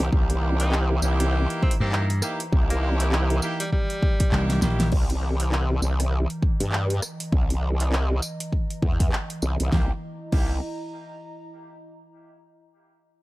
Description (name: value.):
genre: glitch hop.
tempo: 100 BPM.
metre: 4/4.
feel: swing 59% on 16ths.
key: unclear.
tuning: A4 = 440 Hz.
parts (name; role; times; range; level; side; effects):
warm horn section; stabs; 0.0-4.9, 9.7-10.6 s; Bb3 to G4; -32 LUFS; right 1 dB; sidechain pumping, dub echo.
growl bass; bass; 0.0-10.6 s; C2 to G2; -23 LUFS; equal; chorus.
pop drum kit; drums; 0.0-10.5 s; crash cymbal, handclaps, hi-hat, rim click, snare drum, tambourine; -30 LUFS; equal; studio reverb.
warbly tape-like pad; texture; 0.0-12.1 s; E3 to Bb5; -34 LUFS; equal; chorus, built-in reverb, sidechain pumping.
electronic kick drum; drums; 0.1-10.5 s; none; -22 LUFS; equal; studio reverb.
bright tenor saxophone; melody; 0.6-4.6 s; G3 to D#4; -35 LUFS; equal; dub echo.
slap bass; bass; 1.8-4.9 s; Bb1 to G2; -22 LUFS; equal; none.
room: little or no reverb.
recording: none.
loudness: -21 LUFS.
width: side -19 dB against mid.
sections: 0.0-4.9 A section; 4.9-9.7 B section; 9.7-12.1 C section.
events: drop 0.0-4.9; drum fill 4.3-4.9.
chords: 0.0 C7#9.